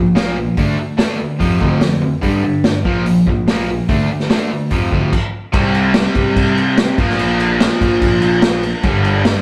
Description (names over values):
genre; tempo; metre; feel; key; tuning
classic rock; 145 BPM; 4/4; straight; unclear; A4 = 441 Hz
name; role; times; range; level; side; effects
cranked stack guitar; riff; 0.0-9.4 s; F2 to D4; -21 LUFS; equal; overdrive
distorted electric guitar; riff; 0.0-9.4 s; F2 to D4; -24 LUFS; equal; distortion
growling picked electric bass; bass; 0.0-9.3 s; G1 to C3; -22 LUFS; equal; overdrive
vintage drum kit; drums; 0.2-9.3 s; crash cymbal, hi-hat, kick drum, snare drum; -19 LUFS; equal; none
mellow tonewheel organ; sustained chords; 5.5-9.4 s; D4 to C5; -33 LUFS; equal; none
room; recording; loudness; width
moderate stone room reverb, RT60 1.0 s; rough rehearsal-room recording; -15 LUFS; mono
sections
0.0-5.5 A section; 5.5-9.4 B section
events
stop 5.1-5.5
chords
0.0 Bb5; 0.6 D5; 1.4 F5; 2.2 G5; 2.9 Bb5; 3.9 D5; 4.7 F5; 5.5 C; 7.0 Bb; 8.8 Gm